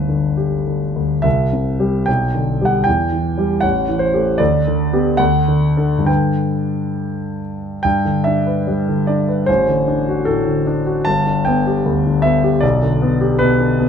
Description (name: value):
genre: classical, romantic character piece for solo piano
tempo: 64-80 BPM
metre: 2/4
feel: rubato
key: G major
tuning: A4 = 444 Hz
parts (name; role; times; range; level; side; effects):
- warm grand piano; solo; 0.0-13.9 s; G1 to A5; -14 LUFS; equal; none
room: moderate stone room reverb, RT60 1.1 s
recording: none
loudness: -14 LUFS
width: side -7 dB against mid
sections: 0.0-7.8 A section; 7.8-13.9 B section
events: none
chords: 0.0 G; 1.2 C; 2.1 G/B; 2.9 Em; 3.6 Am7; 4.4 G/D; 5.2 D; 6.1 G; 9.5 D7/A; 11.1 G; 12.6 G/B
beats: 0.37 | 1.25 2.08 | 2.87 3.64 | 4.40 5.20 | 6.08 6.98 | 7.84 8.67 | 9.48 10.27 | 11.06 11.86 | 12.63 13.41